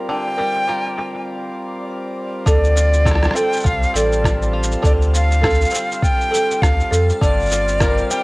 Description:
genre	folktronica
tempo	101 BPM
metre	4/4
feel	swing 56% on 16ths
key	unclear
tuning	A4 = 440 Hz
part	pedal harmonium	sustained chords	0.0-8.2 s	G3 to Bb4	-28 LUFS	equal	none
part	bluegrass banjo	arpeggios	0.0-8.2 s	D3 to Bb4	-29 LUFS	equal	analog delay
part	backwards swelling texture	texture	0.0-8.2 s	D5 to F6	-36 LUFS	equal	built-in reverb
part	breathy bright jazz flute	melody	0.1-8.2 s	D5 to G5	-21 LUFS	equal	cassette tape
part	electronic cabasa and rim click	drums	0.1-8.2 s	none	-25 LUFS	equal	low-pass filter on perc, studio reverb, low-pass filter on snare
part	marimba with medium mallets	second line	0.4-8.0 s	A4 to Bb4	-23 LUFS	right 2 dB	tape echo
part	warm sub bass	bass	2.5-8.0 s	G1 to F2	-18 LUFS	equal	none
part	electronic kick drum	drums	2.5-7.9 s	none	-19 LUFS	equal	studio reverb
room	small room ambience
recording	home recording on cassette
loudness	-15 LUFS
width	side -23 dB against mid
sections	0.0-2.5 A section; 2.5-8.2 B section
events	break 1.3-2.5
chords	0.0 Gm7; 2.5 Dm7; 7.2 Gm7

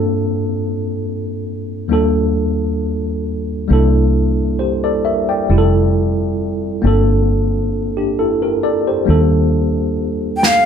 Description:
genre	R&B, neo-soul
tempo	67 BPM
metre	4/4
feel	swing 53% on 16ths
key	unclear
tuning	A4 = 442 Hz
part	tine electric piano	accompaniment	0.0-10.7 s	Eb2 to G5	-16 LUFS	equal	overdrive, fast stereo tremolo
part	deep dub fingered electric bass	bass	3.7-10.7 s	F1 to Eb2	-16 LUFS	equal	none
part	breathy jazz flute	melody	10.4-10.7 s	F5 to G5	-11 LUFS	equal	none
part	snare drum	drums	10.4-10.6 s	none	-14 LUFS	equal	none
room	light reverb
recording	band playing live in one room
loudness	-14 LUFS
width	side -8 dB against mid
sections	0.0-10.7 A section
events	drum fill 10.0-10.7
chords	0.0 Gm11; 1.9 Ebmaj9#11; 3.7 C13; 5.5 Fmaj7; 6.8 Gm11; 9.1 Ebmaj9#11

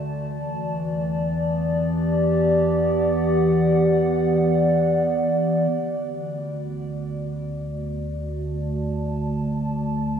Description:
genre	ambient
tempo	free time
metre	none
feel	none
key	D major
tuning	A4 = 440 Hz
part	warbly tape-like pad	sustained chords	0.0-10.2 s	D3 to A5	-20 LUFS	equal	chorus, built-in reverb, shimmer reverb
part	deep rumbling drone	bass	0.0-10.2 s	D2 to E2	-35 LUFS	equal	built-in reverb
room	wet lush hall reverb, RT60 2.6 s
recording	none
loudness	-20 LUFS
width	side -8 dB against mid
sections	0.0-5.7 A section; 5.7-10.2 B section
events	fade-out on synth drone 0.0-5.7; filter sweep on ambient pad 5.7-10.2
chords	0.1 Em7; 5.7 D

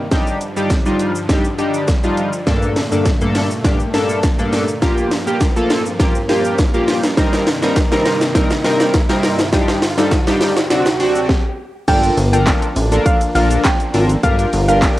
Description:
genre	dance-pop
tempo	102 BPM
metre	4/4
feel	straight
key	unclear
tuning	A4 = 440 Hz
part	supersaw chords	sustained chords	0.0-15.0 s	D2 to Bb4	-26 LUFS	equal	sidechain pumping, cassette tape
part	riser	sound effects	0.3-11.3 s	none	-29 LUFS	equal	none
part	chorused polysynth	accompaniment	0.1-15.0 s	G2 to Bb4	-18 LUFS	equal	sidechain pumping, cassette tape
part	house drum kit	drums	0.1-15.0 s	crash cymbal, handclaps, hi-hat, kick drum, shaker, snare drum	-17 LUFS	equal	overdrive, cassette tape
part	soft round pluck	melody	11.9-15.0 s	F5 to G5	-19 LUFS	right 1 dB	chorus, sidechain pumping, cassette tape
part	chorused synth bass	bass	11.9-14.9 s	G1 to Bb1	-16 LUFS	equal	sidechain pumping
room	light reverb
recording	home recording on cassette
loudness	-13 LUFS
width	side -16 dB against mid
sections	0.0-11.9 A section; 11.9-15.0 B section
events	build-up 0.0-11.9; drum fill 0.0-11.3; stop 11.3-11.9; drop 11.9-15.0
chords	0.1 Ebmaj7/G; 2.5 Bbmaj7/G; 4.8 Gm7; 7.2 Cm7/G; 9.5 Ebmaj7/G; 10.7 D7; 11.9 Bbmaj7/G; 14.2 Gm7

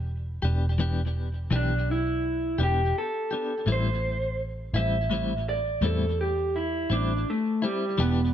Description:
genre	slow blues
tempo	56 BPM (dotted quarters)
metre	12/8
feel	straight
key	unclear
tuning	A4 = 440 Hz
part	vintage muted fingered electric bass	bass	0.0-8.3 s	E1 to E2	-27 LUFS	equal	none
part	clean electric guitar	accompaniment	0.4-8.2 s	A2 to G4	-31 LUFS	left 4 dB	tremolo, tape echo
part	electric guitar through a small old amp	melody	1.6-8.3 s	G3 to E5	-27 LUFS	right 1 dB	none
room	light reverb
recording	echo-heavy mix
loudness	-24 LUFS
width	side -10 dB against mid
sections	0.0-8.3 A section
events	clean electric guitar solo 0.0-8.3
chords	0.0 Em7; 3.7 Am7

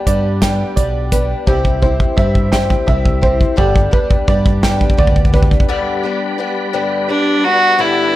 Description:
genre	indie folk with a building arrangement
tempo	57 BPM (dotted quarters)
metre	6/8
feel	straight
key	G major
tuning	A4 = 439 Hz
part	picked twelve-string acoustic guitar	accompaniment	0.0-8.2 s	G2 to G4	-20 LUFS	left 4 dB	none
part	clear upright piano	arpeggios	0.0-5.7 s	G4 to G5	-20 LUFS	right 4 dB	slapback echo
part	deep dub fingered electric bass	bass	0.1-5.5 s	G1 to G2	-18 LUFS	equal	none
part	natural country drum kit	drums	0.1-5.8 s	hi-hat, kick drum, snare drum	-14 LUFS	equal	none
part	tonewheel organ	sustained chords	5.7-8.2 s	G3 to B5	-22 LUFS	equal	slow rotary speaker, overdrive, chorus vibrato
part	warm fiddle	melody	7.1-8.2 s	D4 to F#4	-11 LUFS	equal	none
room	light reverb, small room ambience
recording	none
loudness	-12 LUFS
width	side -15 dB against mid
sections	0.0-5.7 A section; 5.7-8.2 B section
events	build-up 0.0-5.7; drum fill 0.0-5.7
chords	0.0 G; 1.5 C; 3.6 G

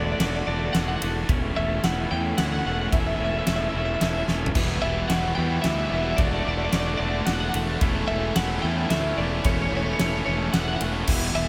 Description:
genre	post-rock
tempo	110 BPM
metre	3/4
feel	straight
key	unclear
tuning	A4 = 440 Hz
part	twelve-string electric guitar	melody	0.0-11.5 s	C#5 to G5	-32 LUFS	equal	warbly pitch drift, analog delay
part	bright studio string section	sustained chords	0.0-11.5 s	E3 to C#5	-43 LUFS	equal	none
part	semi-hollow electric guitar	arpeggios	0.0-11.5 s	E2 to F#4	-36 LUFS	equal	none
part	crunchy overdriven guitar	riff	0.0-11.5 s	D3 to F#4	-32 LUFS	equal	none
part	fuzz fingered electric bass	bass	0.0-11.5 s	E1 to E2	-30 LUFS	equal	overdrive
part	huge arena drum kit	drums	0.2-11.2 s	crash cymbal, kick drum, ride cymbal, snare drum, toms	-30 LUFS	equal	none
part	tight distorted guitar	riff	4.5-11.5 s	E2 to D4	-34 LUFS	equal	distortion
room	light reverb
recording	none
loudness	-24 LUFS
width	mono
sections	0.0-11.5 A section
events	drum fill 4.3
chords	0.0 D6/E; 1.3 Aadd9/E; 4.5 Emadd9; 6.2 D6/E; 7.8 Aadd9/E

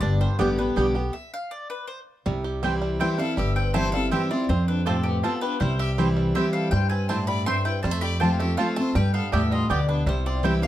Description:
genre	bluegrass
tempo	161 BPM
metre	3/4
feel	straight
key	C major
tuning	A4 = 439 Hz
part	bluegrass banjo	melody	0.0-10.7 s	G3 to G4	-32 LUFS	right 6 dB	none
part	mandolin	melody	0.0-10.7 s	G4 to C6	-31 LUFS	left 3 dB	none
part	picked steel-string acoustic guitar	accompaniment	0.0-10.7 s	F2 to G4	-25 LUFS	left 1 dB	none
part	upright bass	bass	0.0-10.7 s	G1 to G2	-25 LUFS	equal	none
part	mandolin	stabs	0.4-10.5 s	B3 to A5	-28 LUFS	right 6 dB	none
part	clear fiddle	second line	3.0-10.7 s	B3 to E5	-34 LUFS	left 4 dB	none
room	light reverb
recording	close, detailed microphones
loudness	-21 LUFS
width	side -13 dB against mid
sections	0.0-2.3 A section; 2.3-10.7 B section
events	stop 1.1-2.3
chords	0.0 G; 1.1 N.C.; 2.3 C; 4.5 F; 5.6 C; 7.8 F; 9.0 G; 10.1 C

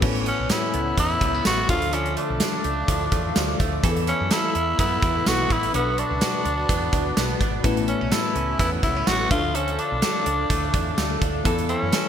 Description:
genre	1980s-style pop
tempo	126 BPM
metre	4/4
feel	swing 55% on 16ths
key	A major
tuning	A4 = 439 Hz
part	mellow FM electric piano	accompaniment	0.0-12.1 s	A2 to C#5	-30 LUFS	left 4 dB	chorus
part	ethereal airy pad	sustained chords	0.0-12.1 s	F#4 to D6	-33 LUFS	left 1 dB	ensemble chorus, built-in reverb
part	direct-recorded clean electric guitar	riff	0.0-12.1 s	E3 to A4	-30 LUFS	right 5 dB	wide subtle chorus
part	woody fretless electric bass	bass	0.0-11.9 s	G#1 to F#2	-28 LUFS	equal	analog chorus
part	gated 80s drum kit	drums	0.0-12.1 s	crash cymbal, hi-hat, kick drum, snare drum, tambourine	-24 LUFS	equal	gated reverb
part	growling tenor saxophone	melody	0.3-12.1 s	B3 to F#4	-25 LUFS	equal	digital delay
room	moderate lush hall reverb, RT60 2.0 s, small room ambience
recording	bright 1980s-style digital production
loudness	-20 LUFS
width	side -9 dB against mid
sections	0.0-12.1 A section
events	none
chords	0.0 Aadd9; 1.7 Dm; 3.8 Esus4; 5.7 Bm; 7.6 Aadd9; 9.3 Dm; 11.5 Esus4

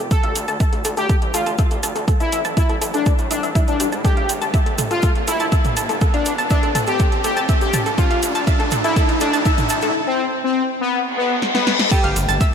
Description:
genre	melodic techno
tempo	122 BPM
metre	4/4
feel	straight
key	unclear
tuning	A4 = 438 Hz
part	analog pluck	arpeggios	0.0-12.5 s	E4 to A6	-24 LUFS	equal	chorus, sidechain pumping, digital delay
part	gritty driven synth bass	bass	0.0-12.4 s	D1 to A2	-28 LUFS	equal	sidechain pumping, high-pass filter
part	riser and reverse cymbal	sound effects	0.0-11.9 s	none	-26 LUFS	left 1 dB	none
part	analog synth brass	melody	0.1-12.2 s	B3 to A4	-22 LUFS	left 2 dB	chorus, sidechain pumping, digital delay
part	deep house drum kit	drums	0.1-12.5 s	crash cymbal, hi-hat, ride cymbal, snare drum, toms	-26 LUFS	right 1 dB	overdrive
part	electronic kick drum	drums	0.1-12.5 s	none	-18 LUFS	equal	overdrive
part	egg shaker	percussion	0.1-12.5 s	none	-30 LUFS	right 3 dB	none
part	dark detuned synth bell	second line	11.9-12.2 s	G5	-25 LUFS	right 1 dB	chorus, phaser, sidechain pumping, digital delay
part	analog drone	drone	12.2-12.5 s	A2 to A3	-33 LUFS	left 4 dB	chorus, sidechain pumping
room	moderate lush hall reverb, RT60 2.4 s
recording	bright 1980s-style digital production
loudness	-16 LUFS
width	side -7 dB against mid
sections	0.0-11.9 A section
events	build-up 0.0-11.9; riser 0.0-9.9; filter sweep on synth arpeggio sound 0.0-11.9; reverse cymbal 11.1-11.9; drum fill 11.4-11.9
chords	0.1 Dm; 2.1 A5; 4.0 Gsus2; 6.0 F; 8.0 Dm; 9.9 N.C.; 11.9 Gsus2

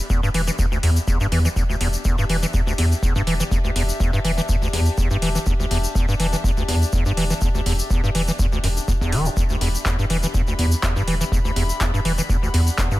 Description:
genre	acid house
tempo	123 BPM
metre	4/4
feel	swing 54% on 16ths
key	E minor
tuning	A4 = 441 Hz
part	warm chamber string section	texture	0.0-13.0 s	D4 to B5	-31 LUFS	left 3 dB	sidechain pumping
part	acid bass, square	riff	0.1-13.0 s	D2 to E3	-23 LUFS	equal	overdrive, wide subtle chorus, cassette tape, sidechain pumping, tape echo
part	electronic kick drum	drums	0.1-13.0 s	none	-22 LUFS	equal	overdrive
part	egg shaker	percussion	0.1-13.0 s	none	-31 LUFS	left 4 dB	none
part	round analog bass	bass	0.3-13.0 s	D1 to E2	-21 LUFS	equal	sidechain pumping
part	booming analog drum machine	drums	0.3-12.9 s	handclaps, hi-hat	-28 LUFS	equal	none
room	digital ambience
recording	none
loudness	-18 LUFS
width	side -17 dB against mid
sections	0.0-13.0 A section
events	fade-in on string section 0.0-13.0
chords	0.0 Em7

